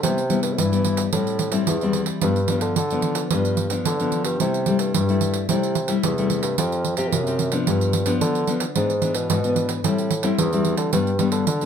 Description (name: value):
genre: samba and choro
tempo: 110 BPM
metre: 4/4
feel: straight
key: unclear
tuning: A4 = 440 Hz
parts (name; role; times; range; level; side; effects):
- nylon-string guitar; accompaniment; 0.0-11.7 s; G2 to G4; -22 LUFS; left 3 dB; none
- mellow bassoon; bass; 0.0-11.7 s; E2 to E3; -25 LUFS; right 1 dB; none
- pandeiro; percussion; 0.0-11.7 s; none; -25 LUFS; right 6 dB; none
room: moderate studio reverb, RT60 0.6 s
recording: none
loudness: -19 LUFS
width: side -8 dB against mid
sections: 0.0-11.7 A section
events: none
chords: 0.0 Cmaj7; 1.1 Am7; 2.2 G7; 4.4 C6; 5.5 Am7/C; 6.6 Fsus2; 7.7 G7; 8.8 E7/G#; 9.8 Am7; 10.9 G